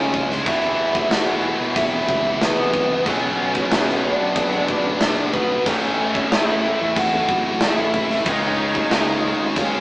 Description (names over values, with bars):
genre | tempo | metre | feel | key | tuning
quiet-loud alternative rock | 92 BPM | 4/4 | straight | A major | A4 = 440 Hz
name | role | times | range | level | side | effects
lead guitar through a small cranked amp | melody | 0.0-9.8 s | B3 to F#5 | -22 LUFS | equal | overdrive
dark symphonic string section | sustained chords | 0.0-9.8 s | G3 to C#6 | -34 LUFS | left 1 dB | none
crunchy overdriven guitar | riff | 0.0-9.8 s | E2 to C#4 | -28 LUFS | right 1 dB | none
heavy high-gain guitar | riff | 0.0-9.8 s | A2 to E#4 | -26 LUFS | left 1 dB | distortion
heavy high-gain guitar | riff | 0.0-9.8 s | E2 to C#4 | -27 LUFS | equal | distortion
growling fingered electric bass | bass | 0.0-9.8 s | F#1 to F#2 | -29 LUFS | equal | overdrive
big rock drum kit | drums | 0.1-9.7 s | crash cymbal, kick drum, snare drum | -22 LUFS | equal | none
room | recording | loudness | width
moderate stone room reverb, RT60 1.3 s | band playing live in one room, small speaker sound | -17 LUFS | side -21 dB against mid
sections
0.0-9.8 A section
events
none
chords
0.5 Em; 3.1 Bm; 5.7 A; 8.3 C#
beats
| 0.47 1.11 1.76 2.42 | 3.06 3.71 4.36 5.01 | 5.66 6.31 6.96 7.61 | 8.26 8.91 9.56